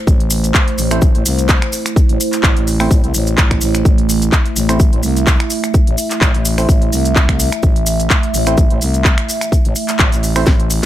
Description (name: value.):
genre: bass house.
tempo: 127 BPM.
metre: 4/4.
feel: swing 55% on 16ths.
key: A minor.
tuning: A4 = 441 Hz.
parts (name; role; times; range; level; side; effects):
dark analog pad; sustained chords; 0.0-10.9 s; A3 to E5; -20 LUFS; right 2 dB; chorus, phaser, sidechain pumping.
growling FM bass; bass; 0.1-10.9 s; A1 to C2; -17 LUFS; equal; tube saturation, sidechain pumping.
electronic kick drum; drums; 0.1-10.6 s; none; -13 LUFS; equal; none.
maracas; percussion; 0.1-10.9 s; none; -22 LUFS; left 1 dB; none.
house drum kit; drums; 0.2-10.9 s; finger snaps, handclaps, hi-hat, snare drum; -19 LUFS; equal; none.
percussive organ stab; stabs; 0.9-10.5 s; A3 to C5; -22 LUFS; right 3 dB; chorus, sidechain pumping, digital delay.
room: little or no reverb.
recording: none.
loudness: -11 LUFS.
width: side -13 dB against mid.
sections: 0.0-10.9 A section.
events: drum fill 10.5-10.9.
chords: 0.0 Am.